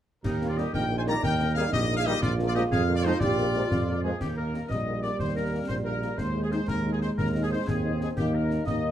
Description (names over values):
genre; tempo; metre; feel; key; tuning
military-style march for wind band; 121 BPM (dotted quarters); 6/8; straight; Eb major; A4 = 440 Hz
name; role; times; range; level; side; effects
clear trumpet section; melody; 0.2-8.9 s; G4 to Bb5; -32 LUFS; left 2 dB; none
clear euphonium; second line; 0.2-3.9 s; Eb4 to G4; -32 LUFS; right 3 dB; none
warm woodwind section; second line; 0.2-8.9 s; Eb4 to Eb5; -35 LUFS; left 1 dB; none
mellow tuba; bass; 0.2-8.9 s; Bb1 to F2; -28 LUFS; right 2 dB; none
concert snare drum, clash cymbals and concert bass drum; drums; 0.2-8.8 s; none; -34 LUFS; left 1 dB; none
dark French horn section; accompaniment; 0.4-8.9 s; Eb3 to Eb4; -36 LUFS; left 5 dB; none
dark trombone section; sustained chords; 0.6-8.9 s; Eb3 to C4; -33 LUFS; right 1 dB; none
room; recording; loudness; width
wet large studio reverb, RT60 0.9 s; dark, warm production; -24 LUFS; side -11 dB against mid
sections
0.2-4.2 A section; 4.2-8.9 B section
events
none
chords
0.2 Eb; 2.2 Bb7; 4.2 Eb; 6.2 Ab/Eb; 8.2 Eb